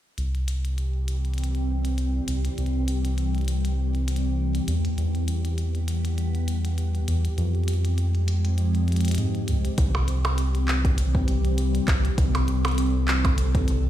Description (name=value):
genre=IDM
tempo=100 BPM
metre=4/4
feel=swing 56% on 16ths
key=C major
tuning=A4 = 440 Hz
part: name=glassy FM pad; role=sustained chords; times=0.9-13.9 s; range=E3 to A4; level=-30 LUFS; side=left 1 dB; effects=ensemble chorus, built-in reverb, phaser
part: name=round analog bass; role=bass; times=0.2-13.9 s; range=C2 to Ab2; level=-23 LUFS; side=equal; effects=none
part: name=glitchy drum kit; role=drums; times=0.2-13.8 s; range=handclaps, hi-hat, percussion blips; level=-33 LUFS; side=right 1 dB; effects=ping-pong delay
part: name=electronic kick drum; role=drums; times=9.8-13.7 s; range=none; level=-24 LUFS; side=equal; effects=none
room=digital ambience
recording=played on a big sound system in a bare room, stone room reverb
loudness=-22 LUFS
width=side -12 dB against mid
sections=0.2-9.8 A section; 9.8-13.9 B section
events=none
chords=0.2 C; 5.0 Em; 7.4 Fmadd9; 9.8 C